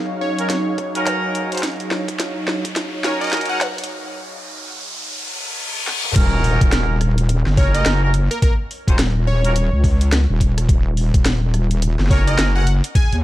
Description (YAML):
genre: glitch hop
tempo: 106 BPM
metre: 4/4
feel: swing 60% on 16ths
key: Eb minor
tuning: A4 = 440 Hz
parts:
  - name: warm analog pad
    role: sustained chords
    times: 0.0-6.1 s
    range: Gb3 to Db5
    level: -27 LUFS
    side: right 1 dB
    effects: chorus, vintage 12-bit sampler grit, sidechain pumping
  - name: riser, reverse cymbal and impact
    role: sound effects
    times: 0.7-8.4 s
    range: none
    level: -28 LUFS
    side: left 2 dB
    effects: none
  - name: ethereal airy pad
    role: texture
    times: 0.0-3.9 s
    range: Eb4 to F5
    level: -32 LUFS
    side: equal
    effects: ensemble chorus, built-in reverb, sidechain pumping
  - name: plucky unison lead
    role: melody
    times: 0.2-3.7, 7.6-13.2 s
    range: Bb4 to Ab5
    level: -27 LUFS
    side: equal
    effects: dub echo
  - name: clear horn section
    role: stabs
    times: 0.4-12.6 s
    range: Db4 to C5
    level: -25 LUFS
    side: right 2 dB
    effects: sidechain pumping, low-pass filter, dub echo
  - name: drum and bass drum kit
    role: drums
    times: 0.4-13.2 s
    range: crash cymbal, hi-hat, rim click, snare drum, toms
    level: -24 LUFS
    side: equal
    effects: studio reverb
  - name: electronic kick drum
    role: drums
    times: 0.8-13.1 s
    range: none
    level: -16 LUFS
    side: equal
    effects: high-pass filter on kick, studio reverb
  - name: wobble bass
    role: bass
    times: 6.2-13.2 s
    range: Eb1 to Eb2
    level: -17 LUFS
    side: equal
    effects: chorus, tube saturation
room: little or no reverb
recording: high-pass filter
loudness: -16 LUFS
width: side -15 dB against mid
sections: 0.0-6.2 A section; 6.2-13.2 B section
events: build-up 0.0-6.2; drum fill 0.0-3.9, 5.9; filter sweep 0.0-6.2; riser 0.7-6.2; break 3.9-6.2; reverse cymbal 5.0-6.2; drop 6.2-13.2; impact 6.2-8.4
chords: 0.0 Ebm7